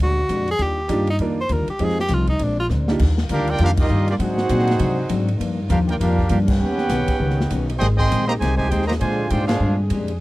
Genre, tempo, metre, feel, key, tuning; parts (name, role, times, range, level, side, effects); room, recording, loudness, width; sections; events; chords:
jazz, big band swing; 200 BPM; 4/4; swing 61% on 8ths; Eb major; A4 = 441 Hz
breathy tenor saxophone; melody; 0.0-2.7 s; D4 to C5; -23 LUFS; equal
picked steel-string acoustic guitar; accompaniment; 0.0-10.1 s; G2 to Ab4; -26 LUFS; left 4 dB
upright bass; bass; 0.0-10.2 s; Ab1 to C3; -21 LUFS; equal
swinging big-band drum kit; drums; 0.0-10.1 s; crash cymbal, hi-hat, kick drum, ride cymbal, snare drum; -26 LUFS; equal
bright upright piano; accompaniment; 0.9-3.0 s; Ab3 to Bb4; -24 LUFS; right 4 dB
mellow saxophone section; sustained chords; 3.0-10.2 s; Db3 to Ab4; -32 LUFS; left 2 dB
clear trumpet section; melody; 3.3-9.8 s; Bb3 to C6; -24 LUFS; right 1 dB
warm trombone section; second line; 3.3-9.8 s; C3 to G4; -26 LUFS; right 3 dB
little or no reverb; dry, close 1970s-style studio recording; -17 LUFS; side -18 dB against mid
0.0-3.0 A section; 3.0-10.2 B section
tenor saxophone solo 0.0-3.0; drum fill 2.7; band accent 3.7, 6.4, 9.5
0.0 Bb13; 0.6 Ebmaj9; 1.8 Fm7; 2.4 Bb9; 3.0 Ebmaj9; 4.2 Ab7#11; 5.4 Gm7; 6.6 Eb7alt; 7.8 Abmaj7; 9.0 Bb13